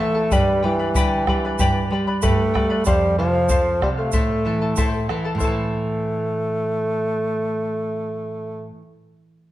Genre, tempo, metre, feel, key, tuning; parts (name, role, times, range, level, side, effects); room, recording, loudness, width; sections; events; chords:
andean folk, Andean ensemble; 94 BPM; 4/4; straight; A minor; A4 = 440 Hz
warm bassoon; melody; 0.0-8.7 s; E3 to A3; -22 LUFS; equal
charango; accompaniment; 0.0-8.9 s; E4 to B5; -26 LUFS; left 3 dB
nylon-string guitar; accompaniment; 0.0-8.8 s; F2 to G3; -24 LUFS; right 2 dB
bombo; percussion; 0.3-5.7 s; -24 LUFS; left 1 dB
tube shaker; percussion; 0.3-5.7 s; -35 LUFS; right 8 dB
wet recital hall reverb, RT60 1.3 s; dark, warm production; -18 LUFS; side -14 dB against mid
0.0-5.4 A section; 5.4-7.9 B section
0.3 G; 2.9 F; 4.1 Am